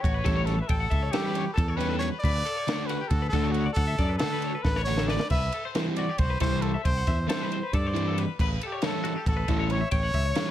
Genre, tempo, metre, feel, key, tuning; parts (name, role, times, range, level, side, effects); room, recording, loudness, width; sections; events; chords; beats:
math rock and midwest emo; 273 BPM (eighths); 7/8; straight; D major; A4 = 440 Hz
warm trumpet; melody; 0.0-10.5 s; F#4 to E5; -31 LUFS; equal; slapback echo, plate reverb
twelve-string electric guitar; arpeggios; 0.0-10.5 s; F#4 to G5; -35 LUFS; left 8 dB; harmonic tremolo, plate reverb
growling fingered electric bass; bass; 0.0-10.3 s; A1 to G2; -28 LUFS; equal; overdrive
compact cocktail drum kit; drums; 0.0-10.5 s; crash cymbal, kick drum, ride cymbal, snare drum; -29 LUFS; equal
overdriven semi-hollow guitar; riff; 0.2-10.5 s; D3 to G4; -30 LUFS; right 1 dB
light reverb; -24 LUFS; side -12 dB against mid
0.0-10.5 A section
drum fill 4.7-5.3
0.0 A7; 2.2 D6; 5.3 C69; 8.4 A7
0.04 0.26 0.47 | 0.69 0.92 1.14 1.35 1.57 1.79 2.02 | 2.23 2.46 2.68 2.90 3.12 3.34 3.56 | 3.78 4.00 4.22 4.44 4.66 4.88 5.10 | 5.32 5.54 5.76 5.98 6.20 6.42 6.63 | 6.86 7.07 7.29 7.51 7.73 7.95 8.17 | 8.39 8.61 8.83 9.05 9.27 9.49 9.71 | 9.92 10.14 10.36